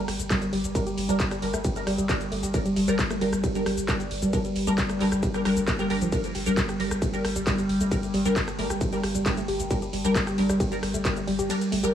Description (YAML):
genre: driving peak-time techno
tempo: 134 BPM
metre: 4/4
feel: straight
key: G minor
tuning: A4 = 439 Hz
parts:
  - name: filtered dub chord stab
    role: stabs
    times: 0.0-11.9 s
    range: G3 to Bb4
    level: -29 LUFS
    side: equal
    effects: phaser, ensemble chorus, sidechain pumping, analog delay
  - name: overtone-sweeping drone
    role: drone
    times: 0.1-11.9 s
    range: G2 to G3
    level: -30 LUFS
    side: equal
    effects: chorus, built-in reverb, sidechain pumping
  - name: woody wave-folded pluck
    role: riff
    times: 0.1-11.9 s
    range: F3 to G4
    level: -29 LUFS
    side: equal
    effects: chorus, tube saturation, sidechain pumping, analog delay
  - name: saturated sub bass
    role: bass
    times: 0.1-11.9 s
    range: G1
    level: -36 LUFS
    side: equal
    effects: sidechain pumping, low-pass filter
  - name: techno drum kit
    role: drums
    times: 0.1-11.9 s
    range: handclaps, hi-hat, ride cymbal, rim click, shaker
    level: -32 LUFS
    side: equal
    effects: none
  - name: electronic kick drum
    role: drums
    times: 0.3-11.1 s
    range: none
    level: -29 LUFS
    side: equal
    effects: distortion
room: light reverb, digital ambience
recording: echo-heavy mix, small room ambience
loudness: -23 LUFS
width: side -10 dB against mid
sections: 0.0-11.9 A section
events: kick drops out 11.5-11.9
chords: 0.0 Gm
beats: 0.30 | 0.75 1.20 1.65 2.10 | 2.54 2.99 3.44 3.89 | 4.33 4.78 5.23 5.68 | 6.12 6.57 7.02 7.47 | 7.92 8.36 8.81 9.26 | 9.71 10.15 10.60 11.05 | 11.50